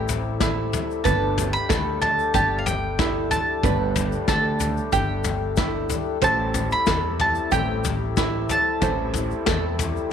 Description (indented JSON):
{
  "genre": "indie folk with a building arrangement",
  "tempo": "93 BPM",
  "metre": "4/4",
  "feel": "straight",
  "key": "A minor",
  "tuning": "A4 = 440 Hz",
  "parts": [
    { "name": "bowl-back mandolin", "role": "melody", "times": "0.0-10.1 s", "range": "F5 to B5", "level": "-24 LUFS", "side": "right 1 dB", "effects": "none" },
    { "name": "clear upright piano", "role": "accompaniment", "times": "0.0-10.1 s", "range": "G1 to E5", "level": "-35 LUFS", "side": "right 14 dB", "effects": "none" },
    { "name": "picked twelve-string acoustic guitar", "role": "accompaniment", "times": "0.0-10.1 s", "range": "A2 to A4", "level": "-31 LUFS", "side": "left 12 dB", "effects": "none" },
    { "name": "hand-pumped harmonium", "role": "sustained chords", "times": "0.0-10.1 s", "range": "C3 to G4", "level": "-34 LUFS", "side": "left 12 dB", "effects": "none" },
    { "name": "open-back banjo", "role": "arpeggios", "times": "0.0-10.1 s", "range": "E4 to C5", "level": "-28 LUFS", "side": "right 13 dB", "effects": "none" },
    { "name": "upright bass", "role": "bass", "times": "0.0-10.0 s", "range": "G1 to E2", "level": "-28 LUFS", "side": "right 1 dB", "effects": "none" },
    { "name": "soft brush drum kit", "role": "drums", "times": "0.1-9.9 s", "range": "kick drum, snare drum, toms", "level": "-26 LUFS", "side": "left 3 dB", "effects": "none" },
    { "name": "egg shaker", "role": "percussion", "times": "0.1-10.0 s", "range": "none", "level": "-37 LUFS", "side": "left 13 dB", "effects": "none" }
  ],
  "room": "light reverb, small room reverb",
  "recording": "1960s-style stereo with parts hard left and right",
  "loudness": "-20 LUFS",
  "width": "side -8 dB against mid",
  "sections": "0.0-10.1 A section",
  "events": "none",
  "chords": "0.0 Am7; 1.1 Gsus2; 6.2 Am7"
}